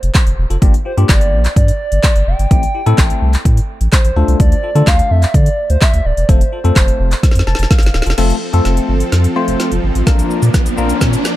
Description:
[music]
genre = dance-pop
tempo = 127 BPM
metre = 4/4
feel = straight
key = unclear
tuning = A4 = 440 Hz
[part]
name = hollow clarinet-like synth lead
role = melody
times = 0.0-7.9 s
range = C5 to G5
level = -21 LUFS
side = right 1 dB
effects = chorus, ping-pong delay
[part]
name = warm sub bass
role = bass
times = 0.0-11.2 s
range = D1 to D3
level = -14 LUFS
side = equal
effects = sidechain pumping
[part]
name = deep house drum kit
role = drums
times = 0.0-11.4 s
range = crash cymbal, handclaps, hi-hat, kick drum, shaker, snare drum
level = -13 LUFS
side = equal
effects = none
[part]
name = bell-like tine electric piano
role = accompaniment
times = 0.5-11.2 s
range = A3 to A5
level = -20 LUFS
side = left 5 dB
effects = phaser, sidechain pumping
[part]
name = supersaw chords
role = sustained chords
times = 8.2-11.4 s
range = F3 to A4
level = -20 LUFS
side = right 1 dB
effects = sidechain pumping
[part]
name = riser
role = sound effects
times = 9.7-11.4 s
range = none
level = -24 LUFS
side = right 1 dB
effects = none
[sound]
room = little or no reverb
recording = dark, warm production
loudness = -11 LUFS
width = side -15 dB against mid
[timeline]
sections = 0.0-8.2 A section; 8.2-11.4 B section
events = drum fill 7.2-8.2, 8.2-11.4; tine electric piano fill 7.2-8.2; build-up 8.2-11.4; riser 9.7-11.4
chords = 0.0 F5; 0.6 Gm7; 2.5 Am7; 4.2 Dm; 6.3 F; 10.1 Bb

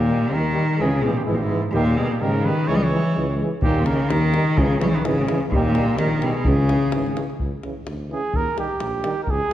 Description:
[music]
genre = balkan folk, Balkan brass band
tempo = 127 BPM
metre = 2/4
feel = swing 56% on 16ths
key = C# dorian sharp4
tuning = A4 = 440 Hz
[part]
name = rich cello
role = melody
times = 0.0-7.2 s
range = G#2 to G3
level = -21 LUFS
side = left 1 dB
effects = none
[part]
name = warm trumpet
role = second line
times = 0.0-9.5 s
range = E4 to D#5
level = -28 LUFS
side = right 3 dB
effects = none
[part]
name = mellow tuba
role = bass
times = 0.0-9.4 s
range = G#1 to G#2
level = -26 LUFS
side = equal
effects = none
[part]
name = clear trombone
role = accompaniment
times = 0.1-9.5 s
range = E3 to G#3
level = -31 LUFS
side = left 3 dB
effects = none
[part]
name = warm euphonium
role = accompaniment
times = 0.1-9.1 s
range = C#3 to E3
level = -29 LUFS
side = right 4 dB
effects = none
[part]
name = davul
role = percussion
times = 3.6-9.4 s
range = none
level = -27 LUFS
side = left 1 dB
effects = none
[sound]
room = wet concert hall reverb, RT60 1.9 s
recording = dark, warm production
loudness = -18 LUFS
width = side -12 dB against mid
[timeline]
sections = 0.0-7.4 A section; 7.4-9.5 B section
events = trumpet solo 7.4-9.5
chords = 0.0 D#; 0.8 C#m; 1.7 D#; 2.7 C#m; 3.6 D#; 4.6 C#m; 5.5 D#; 6.5 C#m; 8.3 D#

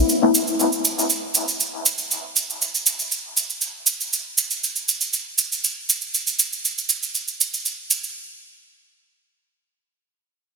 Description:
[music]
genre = techno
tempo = 119 BPM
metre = 4/4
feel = straight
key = none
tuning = none
[part]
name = cabasa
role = percussion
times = 0.1-8.1 s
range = none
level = -20 LUFS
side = right 4 dB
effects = none
[sound]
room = wet lush hall reverb, RT60 2.6 s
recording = dense, heavily limited modern master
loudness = -19 LUFS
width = side -4 dB against mid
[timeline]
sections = 0.0-8.2 A section; 8.2-10.6 B section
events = none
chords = none

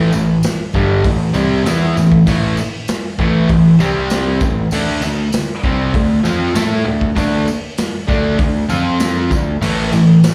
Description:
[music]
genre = garage rock duo or trio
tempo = 98 BPM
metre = 4/4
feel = straight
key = A minor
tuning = A4 = 441 Hz
[part]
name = fuzz guitar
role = riff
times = 0.0-10.2 s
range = G2 to A4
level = -16 LUFS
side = equal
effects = distortion, slapback echo
[part]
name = growling picked electric bass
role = bass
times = 0.0-10.2 s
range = G1 to A2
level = -22 LUFS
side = equal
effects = overdrive
[part]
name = tambourine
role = percussion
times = 0.1-10.3 s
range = none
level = -36 LUFS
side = equal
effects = none
[part]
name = raw garage drum kit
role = drums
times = 0.4-10.3 s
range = hi-hat, kick drum, snare drum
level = -22 LUFS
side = equal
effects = none
[sound]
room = little or no reverb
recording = live gig heard through the venue's PA, club reverb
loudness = -15 LUFS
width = mono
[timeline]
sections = 0.0-10.3 A section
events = none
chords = 0.0 Am; 3.8 C5; 4.4 A5; 4.7 D5; 8.7 F5; 9.3 D5; 9.6 A5

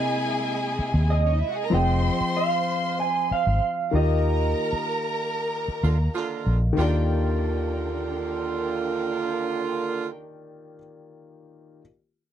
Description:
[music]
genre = soul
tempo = 95 BPM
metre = 4/4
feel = straight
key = Eb major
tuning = A4 = 437 Hz
[part]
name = electric guitar through a small old amp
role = melody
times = 0.0-6.1 s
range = D#5 to Ab5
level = -26 LUFS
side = right 4 dB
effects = lush chorus, slapback echo
[part]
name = warm studio violin section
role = second line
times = 0.0-10.1 s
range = Db4 to C6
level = -30 LUFS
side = equal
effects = none
[part]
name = warm concert grand piano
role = accompaniment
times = 0.0-11.8 s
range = C3 to D#5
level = -30 LUFS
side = left 4 dB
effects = none
[part]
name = clear symphonic string section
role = sustained chords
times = 0.0-1.7 s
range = C3 to D#5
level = -34 LUFS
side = equal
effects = none
[part]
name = vintage muted fingered electric bass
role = bass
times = 0.8-10.8 s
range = F1 to D#2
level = -23 LUFS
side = equal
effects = none
[part]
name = warm horn section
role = stabs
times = 5.8-10.1 s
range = D3 to F4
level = -27 LUFS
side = right 5 dB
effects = none
[sound]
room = little or no reverb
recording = dry, close 1970s-style studio recording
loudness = -22 LUFS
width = side -10 dB against mid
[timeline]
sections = 0.0-6.8 A section; 6.8-9.3 B section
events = band accent 4.2-6.8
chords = 0.0 C7alt; 1.7 Fm7; 3.9 Ebmaj9

